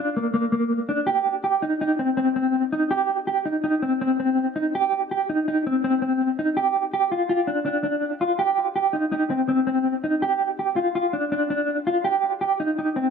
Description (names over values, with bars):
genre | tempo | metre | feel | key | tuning
progressive instrumental, progressive | 164 BPM | 5/4 | straight | C minor | A4 = 440 Hz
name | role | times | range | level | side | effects
mellow electric guitar | solo | 0.0-13.1 s | Bb3 to G4 | -21 LUFS | equal | tremolo, tape echo
room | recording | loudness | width
moderate small room reverb, RT60 0.6 s | dark, warm production | -21 LUFS | side -6 dB against mid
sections
0.0-4.7 A section; 4.7-13.1 A section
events
none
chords
none